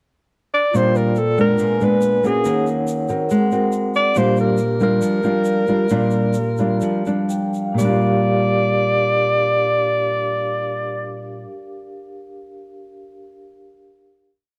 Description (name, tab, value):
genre	bossa nova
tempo	120-141 BPM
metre	4/4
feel	straight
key	Bb major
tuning	A4 = 440 Hz
part	mellow alto saxophone	melody	0.5-11.4 s	Ab4 to D5	-22 LUFS	equal	none
part	nylon-string guitar	accompaniment	0.7-11.6 s	Bb2 to Bb4	-22 LUFS	equal	none
part	vibraphone with soft mallets	accompaniment	0.7-14.3 s	Bb3 to Ab5	-29 LUFS	equal	none
part	egg shaker	percussion	0.7-7.9 s	none	-44 LUFS	equal	none
room	light reverb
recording	worn, warbling old tape, cassette tape, warbly pitch drift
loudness	-18 LUFS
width	mono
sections	0.0-0.7 pickup bar; 0.7-7.8 A section; 7.8-11.8 final chord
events	slowing down 4.2-7.8; vibraphone fill 7.1-7.8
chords	0.0 N.C.; 0.7 Bb6; 1.6 Bb7b9; 2.5 Ebm7; 3.3 Ab9; 4.2 Bb6